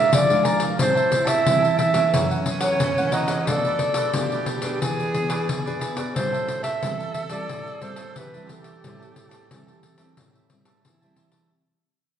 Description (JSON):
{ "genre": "samba and choro", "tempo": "89 BPM", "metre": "4/4", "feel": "straight", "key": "A minor", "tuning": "A4 = 442 Hz", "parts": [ { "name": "warm clarinet", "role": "melody", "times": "0.0-10.8 s", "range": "A4 to E5", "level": "-22 LUFS", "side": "right 1 dB", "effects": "none" }, { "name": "cavaquinho", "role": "accompaniment", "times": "0.0-11.5 s", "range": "E4 to A5", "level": "-30 LUFS", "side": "right 2 dB", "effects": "none" }, { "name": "nylon-string guitar", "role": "accompaniment", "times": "0.0-11.5 s", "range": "F#2 to G#4", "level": "-29 LUFS", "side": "right 1 dB", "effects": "none" }, { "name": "pandeiro", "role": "percussion", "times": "0.1-11.5 s", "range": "none", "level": "-26 LUFS", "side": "left 2 dB", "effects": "none" }, { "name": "breathy tenor saxophone", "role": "second line", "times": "0.8-11.5 s", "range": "C#4 to A4", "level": "-31 LUFS", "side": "right 2 dB", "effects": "none" } ], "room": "wet large studio reverb, RT60 1.3 s", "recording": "band playing live in one room, nothing above 10.4 kHz", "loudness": "-20 LUFS", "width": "side -9 dB against mid", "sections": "0.0-11.5 A section", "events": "fade-out 0.0-11.5", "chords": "0.0 Bb7#11; 0.8 Am7; 2.1 F#7; 3.5 Bm7b5; 4.8 E7; 6.2 Am7" }